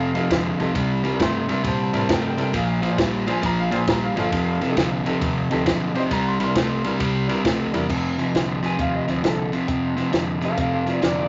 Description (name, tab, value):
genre	electric blues shuffle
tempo	134 BPM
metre	4/4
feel	swing 65% on 8ths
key	F major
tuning	A4 = 440 Hz
part	bright upright piano	accompaniment	0.0-7.8 s	D4 to C6	-30 LUFS	equal	none
part	overdriven semi-hollow guitar	riff	0.0-11.3 s	F2 to A3	-24 LUFS	equal	none
part	vintage muted fingered electric bass	bass	0.0-11.2 s	F1 to Bb2	-33 LUFS	equal	none
part	compact cocktail drum kit	drums	0.1-11.2 s	crash cymbal, hi-hat, kick drum, ride cymbal, snare drum	-29 LUFS	equal	none
part	electric guitar through a small old amp	melody	8.7-11.3 s	F4 to Ab5	-28 LUFS	equal	none
room	light reverb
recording	nothing above 7.6 kHz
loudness	-22 LUFS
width	mono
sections	0.0-7.9 A section; 7.9-11.3 B section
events	none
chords	0.0 F7; 0.8 C7; 2.5 Bb7; 4.3 F7; 6.1 C7; 7.9 F5